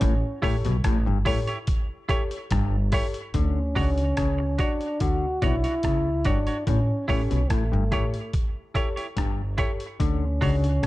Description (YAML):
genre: roots reggae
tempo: 72 BPM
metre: 4/4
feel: straight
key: D major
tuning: A4 = 445 Hz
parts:
  - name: mellow trombone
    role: melody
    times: 0.0-10.9 s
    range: A3 to F#4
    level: -28 LUFS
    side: equal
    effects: tape echo
  - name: mellow clav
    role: riff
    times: 0.0-10.9 s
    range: G2 to D3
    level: -32 LUFS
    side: left 7 dB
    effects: none
  - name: upright bass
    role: bass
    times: 0.0-10.9 s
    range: G1 to D2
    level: -25 LUFS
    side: equal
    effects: none
  - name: trip hop sampler-style drum kit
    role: drums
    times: 0.0-10.9 s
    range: hi-hat, kick drum, rim click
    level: -26 LUFS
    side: equal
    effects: none
  - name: semi-hollow electric guitar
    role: accompaniment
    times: 0.4-10.6 s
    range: D4 to C#5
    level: -33 LUFS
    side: right 3 dB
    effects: tremolo, tape echo
  - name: dark upright piano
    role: stabs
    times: 0.4-10.6 s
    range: D4 to C#5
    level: -34 LUFS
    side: left 4 dB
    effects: none
room: light reverb, small room ambience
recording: dark, warm production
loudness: -22 LUFS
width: side -17 dB against mid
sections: 0.0-3.3 A section; 3.3-10.9 B section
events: none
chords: 0.0 A7; 3.3 Dmaj7; 6.7 A7; 10.0 Dmaj7